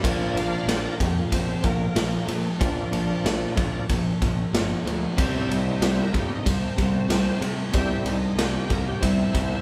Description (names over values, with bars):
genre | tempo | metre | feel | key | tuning
classic rock | 94 BPM | 4/4 | straight | unclear | A4 = 436 Hz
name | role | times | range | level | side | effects
bright tonewheel organ | sustained chords | 0.0-9.6 s | F3 to F5 | -32 LUFS | equal | overdrive, chorus vibrato, slow rotary speaker
biting overdriven guitar | riff | 0.0-9.6 s | Bb2 to C4 | -31 LUFS | equal | none
tight distorted guitar | riff | 0.0-9.6 s | Bb2 to C4 | -33 LUFS | equal | distortion
fuzz picked electric bass | bass | 0.0-9.5 s | G1 to C3 | -33 LUFS | equal | overdrive
raw garage drum kit | drums | 0.0-9.5 s | kick drum, ride cymbal, snare drum | -28 LUFS | equal | none
room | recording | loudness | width
moderate studio reverb, RT60 0.9 s | band playing live in one room | -24 LUFS | mono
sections
0.0-9.6 A section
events
tonewheel organ solo 0.0-9.6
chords
0.0 Bb; 5.2 C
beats
| 0.04 0.68 1.33 1.97 | 2.61 3.25 3.89 4.54 | 5.18 5.82 6.46 7.10 | 7.75 8.39 9.03